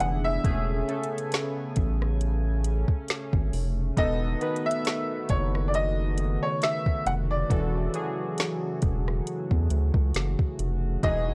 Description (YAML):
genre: contemporary R&B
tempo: 68 BPM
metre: 4/4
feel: swing 54% on 16ths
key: unclear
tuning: A4 = 440 Hz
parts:
  - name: clear baby grand piano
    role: melody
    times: 0.0-11.3 s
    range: C#5 to F#5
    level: -32 LUFS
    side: equal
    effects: tape echo
  - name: warm analog keys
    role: accompaniment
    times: 0.0-11.3 s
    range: C#3 to B4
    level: -36 LUFS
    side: equal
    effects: chorus
  - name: chorused pulse-width pad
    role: sustained chords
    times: 0.0-11.3 s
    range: C#3 to G#5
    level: -38 LUFS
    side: equal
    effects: lush chorus
  - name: round analog bass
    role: bass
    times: 0.0-11.3 s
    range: E1 to E2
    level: -29 LUFS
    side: equal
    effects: none
  - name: smooth R&B drum kit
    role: drums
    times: 0.0-11.3 s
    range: hi-hat, kick drum, rim click, snare drum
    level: -29 LUFS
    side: equal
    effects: none
room: digital ambience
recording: dry, gritty hardware recording, cassette tape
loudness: -27 LUFS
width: mono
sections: 0.0-11.3 A section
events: none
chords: 0.4 Amaj9/E; 4.0 B7/E; 7.5 Dmaj7/E